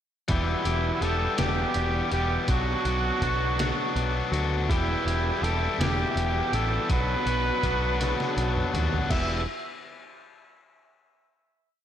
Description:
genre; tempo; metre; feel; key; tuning
indie rock; 54 BPM (dotted quarters); 6/8; straight; E minor; A4 = 440 Hz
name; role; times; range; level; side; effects
warm trumpet; melody; 0.3-9.4 s; E4 to E5; -30 LUFS; right 3 dB; tape echo
overdriven electric guitar; riff; 0.3-9.4 s; E2 to G4; -28 LUFS; left 4 dB; none
growling picked electric bass; bass; 0.3-9.4 s; E1 to D#2; -28 LUFS; equal; overdrive
trip hop sampler-style drum kit; drums; 0.3-9.3 s; crash cymbal, hi-hat, kick drum, snare drum, toms; -31 LUFS; equal; none
room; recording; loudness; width
moderate lush hall reverb, RT60 2.0 s, digital ambience; dreamy mix soaked in reverb; -23 LUFS; side -10 dB against mid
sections
0.3-9.1 verse; 9.1-11.3 final chord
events
drum fill 8.0-9.1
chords
0.3 Em; 2.5 Bm; 4.7 Em; 6.9 Bm; 9.1 Em

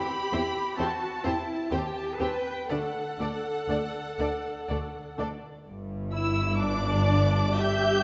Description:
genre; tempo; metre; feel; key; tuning
classical, slow romantic movement for string orchestra; 59-68 BPM; 3/4; rubato; G major; A4 = 441 Hz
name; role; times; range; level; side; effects
rich studio violin section; melody; 0.0-8.0 s; F#5 to G6; -36 LUFS; equal; none
clear studio cello section; bass; 0.0-8.0 s; G2 to B4; -34 LUFS; equal; none
rich studio violin section; second line; 0.3-8.0 s; G4 to E5; -36 LUFS; equal; none
rich studio viola section; accompaniment; 0.3-8.0 s; A3 to G4; -35 LUFS; equal; none
rich studio double bass section; bass; 0.3-8.0 s; G1 to E2; -35 LUFS; equal; none
room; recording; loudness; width
wet scoring stage reverb, RT60 1.9 s; nothing above 7.8 kHz; -29 LUFS; mono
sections
0.0-5.7 A section; 5.7-8.0 B section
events
none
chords
0.0 C/E; 1.7 N.C.; 2.7 D; 5.7 G5

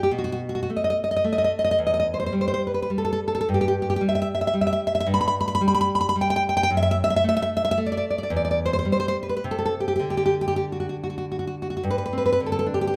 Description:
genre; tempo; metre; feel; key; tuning
romantic piece for solo classical guitar; 98-113 BPM; 3/4; rubato; E minor, G major from 5.1 s; A4 = 441 Hz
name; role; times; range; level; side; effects
nylon-string guitar; solo; 0.0-13.0 s; E2 to B5; -23 LUFS; equal; none
room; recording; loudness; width
moderate recital hall reverb, RT60 1.4 s; none; -23 LUFS; mono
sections
0.0-11.8 A section; 11.8-13.0 B section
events
none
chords
0.1 B7; 1.8 Em; 3.5 N.C.; 6.7 F#m7; 8.3 Em; 9.4 N.C.; 11.8 G5

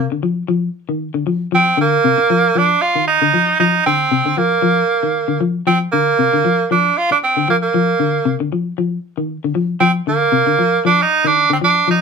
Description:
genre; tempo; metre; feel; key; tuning
afrobeat; 116 BPM; 4/4; swing 53% on 16ths; unclear; A4 = 440 Hz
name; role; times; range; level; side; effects
edgy tenor saxophone; melody; 0.0-12.0 s; Bb3 to F4; -14 LUFS; right 4 dB; none
clean electric guitar; arpeggios; 0.0-12.0 s; C3 to F3; -18 LUFS; left 5 dB; none
room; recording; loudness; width
moderate studio reverb, RT60 0.5 s; band playing live in one room; -13 LUFS; side -5 dB against mid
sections
0.0-12.0 A section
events
none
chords
0.0 C9sus4 (rootless)

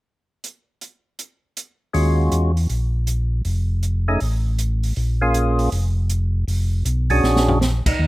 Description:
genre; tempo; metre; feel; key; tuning
soul jazz organ trio; 159 BPM; 4/4; swing 66% on 8ths; Eb minor; A4 = 441 Hz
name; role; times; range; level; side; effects
open jazz drum kit; drums; 0.4-7.9 s; crash cymbal, hi-hat, kick drum, snare drum, toms; -25 LUFS; right 1 dB; none
percussive tonewheel organ; melody; 1.9-8.1 s; Ab3 to G#4; -20 LUFS; equal; slow rotary speaker, overdrive
mellow tonewheel organ; bass; 1.9-8.1 s; F1 to Fb2; -19 LUFS; equal; chorus vibrato, slow rotary speaker
room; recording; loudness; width
small room ambience; rough home demo mix; -18 LUFS; side -18 dB against mid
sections
0.4-1.9 A section; 1.9-8.0 B section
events
drum fill 7.2-7.6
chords
0.4 N.C.; 1.9 Ebm11; 3.5 F; 5.0 Bbm7; 6.5 Fdim; 7.2 Bb7alt

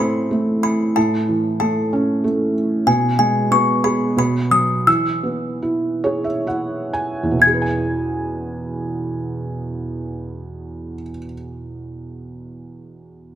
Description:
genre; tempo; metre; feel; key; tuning
children's music, lullaby; 60-95 BPM; 3/4; rubato; E major; A4 = 440 Hz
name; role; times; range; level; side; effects
music box; melody; 0.0-11.1 s; G#5 to G#6; -18 LUFS; left 2 dB; none
felt-muted upright piano; accompaniment; 0.0-13.4 s; E2 to G#5; -20 LUFS; right 2 dB; none
room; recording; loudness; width
moderate recital hall reverb, RT60 1.6 s; close, detailed microphones; -17 LUFS; side -10 dB against mid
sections
0.0-7.4 A section; 7.4-13.3 B section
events
slowing down 2.9-7.4; felt piano fill 5.6-7.4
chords
0.0 Am; 1.0 A; 2.9 G#madd11/B; 4.2 B; 4.9 E

